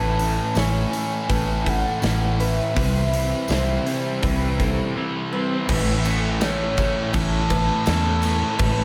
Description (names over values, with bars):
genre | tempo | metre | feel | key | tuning
rock, shoegaze and dream pop | 82 BPM | 4/4 | straight | unclear | A4 = 441 Hz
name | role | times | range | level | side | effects
hollow clarinet-like synth lead | melody | 0.0-8.8 s | C#5 to A5 | -30 LUFS | equal | chorus, slapback echo
picked twelve-string acoustic guitar | arpeggios | 0.0-8.8 s | A4 to C#5 | -34 LUFS | equal | lush chorus, slapback echo
biting overdriven guitar | riff | 0.0-8.8 s | A2 to C4 | -32 LUFS | equal | phaser
overdriven electric guitar | riff | 0.0-8.8 s | A2 to E4 | -33 LUFS | equal | reverse reverb
thick fuzz guitar | riff | 0.0-8.8 s | A2 to C4 | -30 LUFS | equal | distortion, ensemble chorus
vintage muted fingered electric bass | bass | 0.0-8.8 s | A1 to E2 | -26 LUFS | equal | none
big rock drum kit | drums | 0.2-8.8 s | crash cymbal, hi-hat, kick drum, snare drum | -29 LUFS | equal | none
tambourine | percussion | 0.6-8.7 s | none | -43 LUFS | equal | none
room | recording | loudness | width
light reverb, studio reverb | none | -22 LUFS | mono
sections
0.0-5.7 A section; 5.7-8.8 B section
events
break 5.0-5.7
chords
0.0 Aadd9; 2.8 Cmaj7; 5.7 A